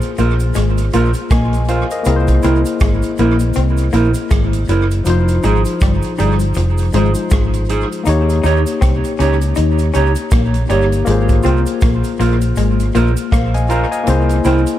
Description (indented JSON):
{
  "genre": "lovers rock reggae",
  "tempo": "80 BPM",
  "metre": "4/4",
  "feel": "swing 59% on 16ths",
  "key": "Ab major",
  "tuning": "A4 = 440 Hz",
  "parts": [
    { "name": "barky tine electric piano", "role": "accompaniment", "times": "0.0-14.8 s", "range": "F3 to Bb5", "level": "-20 LUFS", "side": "left 4 dB", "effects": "overdrive" },
    { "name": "vintage drum kit", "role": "drums", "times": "0.0-14.8 s", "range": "hi-hat, kick drum, rim click", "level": "-19 LUFS", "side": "equal", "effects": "tape echo" },
    { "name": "cabasa", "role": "percussion", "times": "0.0-14.8 s", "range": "none", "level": "-37 LUFS", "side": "right 5 dB", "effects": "tape echo" },
    { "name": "electric guitar through a small old amp", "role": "riff", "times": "0.2-14.6 s", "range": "F3 to Eb4", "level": "-22 LUFS", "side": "left 5 dB", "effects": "wide subtle chorus" },
    { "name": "mellow electric guitar", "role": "stabs", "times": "0.2-14.6 s", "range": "Eb4 to Db5", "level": "-21 LUFS", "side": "right 5 dB", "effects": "tape echo" },
    { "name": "vintage muted fingered electric bass", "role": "bass", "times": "0.2-14.6 s", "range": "F1 to Eb2", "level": "-15 LUFS", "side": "equal", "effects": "none" }
  ],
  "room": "light reverb, studio ambience",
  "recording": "dark, warm production",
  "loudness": "-12 LUFS",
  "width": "side -12 dB against mid",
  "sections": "0.0-14.8 A section",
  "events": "none",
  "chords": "0.0 Ab69; 2.1 Caug7; 5.1 Fm7; 8.1 Eb7; 11.1 Ab69; 14.1 Caug7"
}